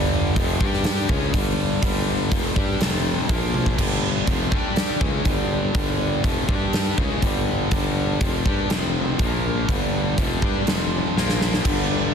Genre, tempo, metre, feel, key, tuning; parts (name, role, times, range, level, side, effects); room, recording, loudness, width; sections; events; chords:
hard rock; 122 BPM; 4/4; straight; A4 = 440 Hz
cranked stack guitar; riff; 0.0-12.1 s; F2 to G4; -26 LUFS; left 12 dB; overdrive
tight distorted guitar; riff; 0.0-12.1 s; F2 to G4; -28 LUFS; right 12 dB; distortion
warm tuba; bass; 0.0-12.1 s; F1 to G2; -27 LUFS; equal
huge arena drum kit; drums; 0.4-11.8 s; crash cymbal, hi-hat, kick drum, snare drum, toms; -23 LUFS; equal
raw garage guitar; riff; 11.6-12.1 s; G2 to G3; -27 LUFS; left 3 dB; overdrive, spring reverb
light reverb, studio ambience; dense, heavily limited modern master; -19 LUFS; side -7 dB against mid
0.0-3.8 A section; 3.8-12.1 B section
drum fill 3.5, 11.2-11.7
0.0 G5; 2.8 F5; 3.3 Bb5; 3.8 G5; 8.7 F5; 9.2 Bb5; 9.7 G5; 10.7 F5; 11.2 Bb5